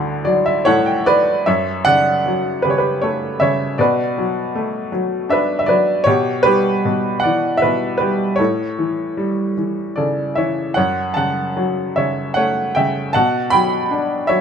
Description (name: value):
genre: classical, lyrical solo piano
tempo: 77 BPM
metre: 3/4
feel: rubato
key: unclear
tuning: A4 = 440 Hz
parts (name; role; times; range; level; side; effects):
- bright upright piano; solo; 0.0-14.4 s; D2 to B5; -15 LUFS; equal; none
room: light reverb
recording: none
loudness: -15 LUFS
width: side -7 dB against mid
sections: 0.0-1.5 A section; 1.5-14.4 B section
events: upright piano fill 0.0-1.5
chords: 0.0 D; 1.5 F#m; 3.8 Bm7; 6.1 Em/B; 8.4 A7; 10.8 F#m; 13.1 Bm7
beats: 0.66 | 1.47 2.25 3.02 | 3.79 4.55 5.30 | 6.06 6.84 7.62 | 8.39 9.18 9.97 | 10.76 11.56 12.37 | 13.15 13.91